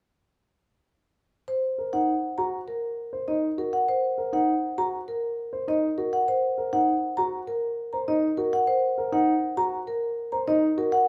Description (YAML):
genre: classical, minimalist pattern music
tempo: 100 BPM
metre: 4/4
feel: straight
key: Eb dorian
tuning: A4 = 440 Hz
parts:
  - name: marimba with medium mallets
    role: melody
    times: 1.5-11.1 s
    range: Bb4 to Bb5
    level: -28 LUFS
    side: equal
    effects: none
  - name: dark baby grand piano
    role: arpeggios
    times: 1.8-11.0 s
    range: Eb4 to C5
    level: -29 LUFS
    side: equal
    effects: none
room: wet large studio reverb, RT60 0.9 s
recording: heard from further back in the room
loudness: -26 LUFS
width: mono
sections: 1.5-11.1 A section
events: none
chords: 1.5 Ebm